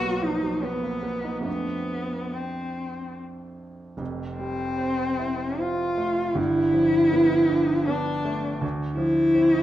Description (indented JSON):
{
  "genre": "classical, impressionist duo for cello and grand piano",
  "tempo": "70-83 BPM",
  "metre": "3/4",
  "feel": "rubato",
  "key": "F lydian",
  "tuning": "A4 = 440 Hz",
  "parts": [
    { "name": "rich cello", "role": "melody", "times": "0.0-9.6 s", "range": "B3 to F#4", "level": "-23 LUFS", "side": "equal", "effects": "none" },
    { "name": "clear baby grand piano", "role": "accompaniment", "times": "0.0-9.6 s", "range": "F1 to E4", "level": "-28 LUFS", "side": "right 2 dB", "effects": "none" }
  ],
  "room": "moderate recital hall reverb, RT60 1.4 s",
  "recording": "dark, warm production",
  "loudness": "-22 LUFS",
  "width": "side -13 dB against mid",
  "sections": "0.0-4.0 A section; 4.0-9.6 B section",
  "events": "none",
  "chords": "0.0 Bmaj7; 1.5 F6; 4.0 Fmaj9; 6.4 G13; 8.6 Dm9"
}